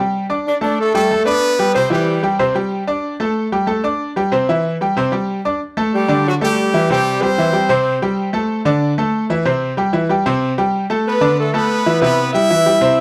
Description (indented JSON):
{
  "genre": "latin",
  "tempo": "187 BPM",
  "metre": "4/4",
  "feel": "straight",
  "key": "G major",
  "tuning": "A4 = 439 Hz",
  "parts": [
    { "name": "bright concert grand piano", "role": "accompaniment", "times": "0.0-13.0 s", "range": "C3 to D6", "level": "-19 LUFS", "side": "equal", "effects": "none" },
    { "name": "brilliant horn section", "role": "melody", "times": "0.5-2.2, 5.9-8.0, 11.1-13.0 s", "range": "F#3 to E5", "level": "-18 LUFS", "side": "equal", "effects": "tape echo" }
  ],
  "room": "moderate studio reverb, RT60 0.6 s",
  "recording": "dark, warm production",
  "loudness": "-17 LUFS",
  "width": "mono",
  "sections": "0.0-5.6 A section; 5.6-13.0 B section",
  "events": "none",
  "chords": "0.5 Gadd9; 1.7 C; 3.0 Gsus2; 4.3 C; 5.6 Gsus2; 6.9 C; 8.2 Gsus2; 9.4 C; 10.7 Gadd9; 12.0 C"
}